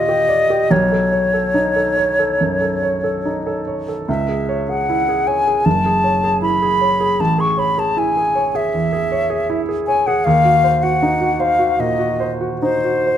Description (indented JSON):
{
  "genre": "classical, impressionist duo for flute and grand piano",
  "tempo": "66-80 BPM",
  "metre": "4/4",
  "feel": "rubato",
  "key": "unclear",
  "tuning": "A4 = 440 Hz",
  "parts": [
    { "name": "concert flute", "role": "melody", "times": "0.0-13.2 s", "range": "B#4 to C#6", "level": "-16 LUFS", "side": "left 1 dB", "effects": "none" },
    { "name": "clear baby grand piano", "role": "accompaniment", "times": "0.0-13.2 s", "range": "F#1 to D5", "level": "-19 LUFS", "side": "right 1 dB", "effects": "none" }
  ],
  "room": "moderate recital hall reverb, RT60 1.4 s",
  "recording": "close, detailed microphones",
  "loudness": "-15 LUFS",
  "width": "side -10 dB against mid",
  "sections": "0.0-13.2 A section",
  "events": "none",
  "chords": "0.0 D#maj9; 0.7 B9; 4.1 C#m; 5.7 F#m9; 7.2 Amaj7; 10.3 D#m6"
}